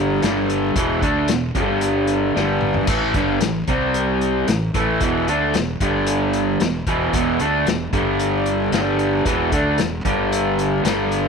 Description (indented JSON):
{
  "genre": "blues rock power trio and southern rock",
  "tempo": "113 BPM",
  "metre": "4/4",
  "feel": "straight",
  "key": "unclear",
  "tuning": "A4 = 438 Hz",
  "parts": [
    { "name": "raw garage guitar", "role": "riff", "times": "0.0-11.3 s", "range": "E2 to D4", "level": "-18 LUFS", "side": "equal", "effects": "overdrive" },
    { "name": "fuzz fingered electric bass", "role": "bass", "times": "0.0-11.3 s", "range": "E1 to D2", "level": "-27 LUFS", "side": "right 1 dB", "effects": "overdrive" },
    { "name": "vintage drum kit", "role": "drums", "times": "0.2-11.2 s", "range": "crash cymbal, hi-hat, kick drum, snare drum, toms", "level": "-24 LUFS", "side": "left 2 dB", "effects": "none" }
  ],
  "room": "light reverb, small room ambience",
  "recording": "1960s-style stereo",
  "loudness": "-17 LUFS",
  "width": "side -5 dB against mid",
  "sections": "0.0-11.3 A section",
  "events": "drum fill 2.4-2.9",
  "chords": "0.0 G5; 0.8 E5; 1.6 G5; 2.9 A5; 3.7 C5; 4.5 A5; 5.0 E5; 5.8 G5; 6.6 E5; 7.9 G5; 9.3 E5; 10.1 G5"
}